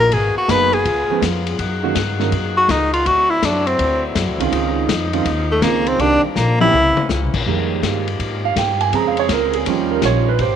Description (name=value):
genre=jazz, big band swing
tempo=164 BPM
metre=4/4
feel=swing 66% on 8ths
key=F minor from 7.5 s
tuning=A4 = 440 Hz
part: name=warm tenor saxophone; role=melody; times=0.0-7.1 s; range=G3 to Cb5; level=-16 LUFS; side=left 1 dB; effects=none
part: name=clear saxophone section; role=sustained chords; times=0.0-10.6 s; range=Cb3 to Ab4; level=-26 LUFS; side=left 2 dB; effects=none
part: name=upright bass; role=bass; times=0.0-10.6 s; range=Gb1 to Ab2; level=-22 LUFS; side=left 1 dB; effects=none
part: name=vintage drum kit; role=drums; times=0.1-10.5 s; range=crash cymbal, hi-hat, kick drum, ride cymbal, snare drum, toms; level=-24 LUFS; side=left 7 dB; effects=none
part: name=clear concert grand piano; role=accompaniment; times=0.5-10.6 s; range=Db3 to Bb5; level=-20 LUFS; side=right 12 dB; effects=none
room=moderate plate reverb, RT60 2.0 s, small room ambience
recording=1960s-style stereo with parts hard left and right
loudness=-15 LUFS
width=side -8 dB against mid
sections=0.0-7.5 A section; 7.5-10.6 A section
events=tenor saxophone solo 0.0-7.5; drum fill 6.4-7.1; grand piano solo 7.5-10.6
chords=0.1 Abm9; 0.9 Db7; 1.6 Gb69; 3.1 D9; 4.5 Dbmaj9; 6.0 Cm9; 6.7 C7b9; 7.5 Fm11; 8.9 Bbm9; 9.7 Eb9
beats=| 0.12 0.49 0.85 1.22 | 1.59 1.96 2.32 2.69 | 3.06 3.42 3.79 4.16 | 4.53 4.89 5.26 5.63 | 5.99 6.36 6.73 7.09 | 7.46 7.83 8.19 8.56 | 8.93 9.29 9.66 10.03 | 10.39